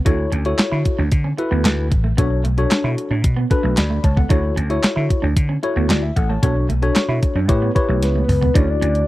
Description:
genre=early-eighties boogie funk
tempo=113 BPM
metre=4/4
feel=straight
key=D major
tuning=A4 = 440 Hz
part: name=tine electric piano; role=accompaniment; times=0.1-9.1 s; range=D4 to B5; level=-22 LUFS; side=left 2 dB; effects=phaser
part: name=clean electric guitar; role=riff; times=0.1-8.9 s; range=A3 to E4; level=-27 LUFS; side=right 6 dB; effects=analog chorus
part: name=vintage slap bass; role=bass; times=0.1-9.0 s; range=A1 to D3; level=-19 LUFS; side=equal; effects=none
part: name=crisp 8-bit digital drum machine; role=drums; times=0.1-9.1 s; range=handclaps, hi-hat, kick drum, snare drum, toms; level=-18 LUFS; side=equal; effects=overdrive
part: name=soft octave-layered synth lead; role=melody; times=8.0-9.1 s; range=B4 to D5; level=-21 LUFS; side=left 1 dB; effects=chorus
room=little or no reverb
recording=dry, close 1970s-style studio recording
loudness=-16 LUFS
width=side -17 dB against mid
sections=0.0-8.6 A section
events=drum fill 8.0-8.6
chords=0.1 Dmaj7; 2.2 Bm7; 4.3 Dmaj7; 6.4 Bm7; 7.5 A7; 8.6 Dmaj7

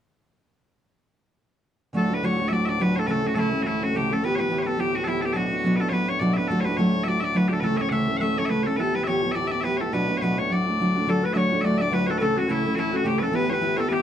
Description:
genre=celtic folk, Celtic reel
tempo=210 BPM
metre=4/4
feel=swing 58% on 8ths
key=D major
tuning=A4 = 436 Hz
part: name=fingerpicked steel-string acoustic guitar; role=accompaniment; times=1.9-14.0 s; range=B2 to A4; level=-23 LUFS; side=right 1 dB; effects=none
part: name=loud bright bagpipes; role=melody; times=2.0-14.0 s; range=E4 to F#5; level=-26 LUFS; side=left 2 dB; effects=none
part: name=hand-pumped harmonium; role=drone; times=2.0-14.0 s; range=D2 to A2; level=-33 LUFS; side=left 1 dB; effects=none
part: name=bright baroque flute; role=second line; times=11.1-14.0 s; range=E4 to D5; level=-28 LUFS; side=left 4 dB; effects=none
room=wet small room reverb, RT60 0.6 s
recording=dark, warm production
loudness=-21 LUFS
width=side -9 dB against mid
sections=1.9-11.1 A section; 11.1-14.0 A section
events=none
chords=1.9 D; 3.1 A; 4.2 Em; 5.4 Bm; 6.5 D; 7.6 A; 8.8 Em; 9.9 Bm; 10.5 D; 12.2 A; 13.3 Em

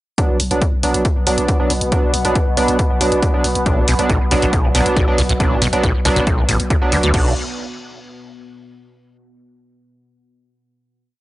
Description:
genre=driving peak-time techno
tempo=138 BPM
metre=4/4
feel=straight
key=B minor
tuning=A4 = 440 Hz
part: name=sync-sweep polysynth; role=stabs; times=0.2-7.3 s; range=F#3 to D4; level=-19 LUFS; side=right 2 dB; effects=chorus, vintage 12-bit sampler grit, sidechain pumping, tape echo
part: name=deep dark ambient pad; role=drone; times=1.2-7.2 s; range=B2 to B3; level=-26 LUFS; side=equal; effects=chorus, built-in reverb, sidechain pumping
part: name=electronic kick drum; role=drums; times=0.2-7.2 s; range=none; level=-18 LUFS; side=equal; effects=none
part: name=punchy analog drum machine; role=drums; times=0.2-7.2 s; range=crash cymbal, hi-hat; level=-23 LUFS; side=equal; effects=none
part: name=growling 808-style bass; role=bass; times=0.3-7.3 s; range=B1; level=-24 LUFS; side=equal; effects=tube saturation, sidechain pumping, low-pass filter
part: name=acid bass, saw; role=riff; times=3.7-7.3 s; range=A1 to D2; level=-19 LUFS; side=equal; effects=ensemble chorus, sidechain pumping, tape echo
room=little or no reverb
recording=dry, gritty hardware recording, transformer saturation, cassette tape, nothing above 10.7 kHz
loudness=-14 LUFS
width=side -16 dB against mid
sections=0.2-7.1 groove; 7.1-8.9 final chord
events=none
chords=0.2 Bm; 7.1 N.C.

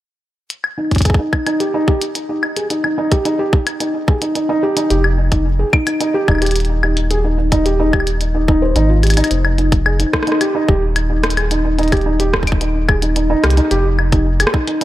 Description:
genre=IDM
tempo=109 BPM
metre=4/4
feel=straight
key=F minor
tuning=A4 = 441 Hz
part: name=glitchy drum kit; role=drums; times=0.5-14.8 s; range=claves, hi-hat, rim click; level=-20 LUFS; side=left 2 dB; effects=tape echo
part: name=felt-muted upright piano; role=arpeggios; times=0.8-14.8 s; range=Eb4 to C5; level=-17 LUFS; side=right 1 dB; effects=low-pass filter, analog delay
part: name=electronic kick drum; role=drums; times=0.9-14.6 s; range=none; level=-15 LUFS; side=equal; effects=none
part: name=warm sub bass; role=bass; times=4.9-14.5 s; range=Eb1 to C2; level=-16 LUFS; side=equal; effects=none
room=light reverb, digital ambience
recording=echo-heavy mix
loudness=-13 LUFS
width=side -14 dB against mid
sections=0.5-9.3 A section; 9.3-14.8 B section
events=drum fill 9.0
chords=0.5 F7sus2 (rootless); 9.3 F7sus2

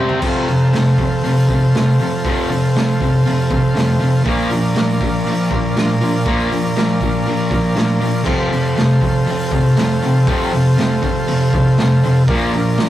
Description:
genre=garage rock duo or trio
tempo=120 BPM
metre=4/4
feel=straight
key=F major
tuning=A4 = 437 Hz
part: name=overdriven combo organ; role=sustained chords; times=0.0-12.9 s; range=G4 to F5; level=-21 LUFS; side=right 1 dB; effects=none
part: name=fuzz guitar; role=riff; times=0.0-12.9 s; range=F2 to C4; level=-15 LUFS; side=equal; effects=distortion
part: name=raw garage drum kit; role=drums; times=0.1-12.9 s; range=crash cymbal, hi-hat, kick drum, snare drum, toms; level=-21 LUFS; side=right 1 dB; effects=none
room=light reverb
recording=rough rehearsal-room recording, warm saturation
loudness=-13 LUFS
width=side -13 dB against mid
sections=0.2-12.9 A section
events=drum fill 0.0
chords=0.2 F; 4.3 Bb; 8.3 F; 12.3 Bb

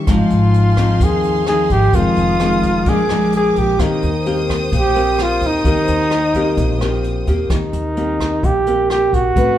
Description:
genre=bossa nova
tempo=129 BPM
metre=4/4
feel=straight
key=Eb major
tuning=A4 = 440 Hz
part: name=nylon-string guitar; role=accompaniment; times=0.0-9.6 s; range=F2 to B4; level=-19 LUFS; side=left 2 dB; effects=none
part: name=rich chamber violin section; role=sustained chords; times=0.0-7.5 s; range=Ab4 to Eb6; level=-27 LUFS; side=left 1 dB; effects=none
part: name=breathy flugelhorn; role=melody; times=0.1-9.6 s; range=Eb4 to Ab4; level=-17 LUFS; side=right 1 dB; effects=none
part: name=upright bass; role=bass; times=0.1-9.5 s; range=F1 to Eb2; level=-20 LUFS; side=equal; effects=none
part: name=jazz brush drum kit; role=drums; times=0.1-9.5 s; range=hi-hat, kick drum, rim click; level=-22 LUFS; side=equal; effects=none
room=moderate large studio reverb, RT60 0.9 s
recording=heard from further back in the room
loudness=-13 LUFS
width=side -12 dB against mid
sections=0.0-7.5 A section; 7.5-9.6 A section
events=none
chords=0.1 Ab6; 1.9 Fm7; 2.9 Bb7; 3.8 Eb6

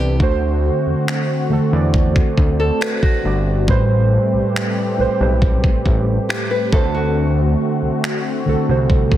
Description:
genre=contemporary R&B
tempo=69 BPM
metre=4/4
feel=straight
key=unclear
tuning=A4 = 442 Hz
part: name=muted felt-like synth keys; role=accompaniment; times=0.0-9.2 s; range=A2 to D5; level=-19 LUFS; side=right 2 dB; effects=chorus
part: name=warm analog pad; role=sustained chords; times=0.0-9.2 s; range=D3 to G4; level=-24 LUFS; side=left 1 dB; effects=chorus
part: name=nylon-string guitar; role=arpeggios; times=0.0-8.2 s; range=F#4 to B4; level=-23 LUFS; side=left 2 dB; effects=digital delay
part: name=fat analog bass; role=bass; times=0.0-9.2 s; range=G1 to E2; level=-18 LUFS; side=equal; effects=none
part: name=dusty soul sampler-style drum kit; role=drums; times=0.2-9.2 s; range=finger snaps, kick drum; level=-18 LUFS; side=equal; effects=soft clipping on snare
room=light reverb, digital ambience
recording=dense, heavily limited modern master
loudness=-15 LUFS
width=side -12 dB against mid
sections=0.0-9.2 A section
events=none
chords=0.2 D7; 3.7 Am9; 6.7 D7

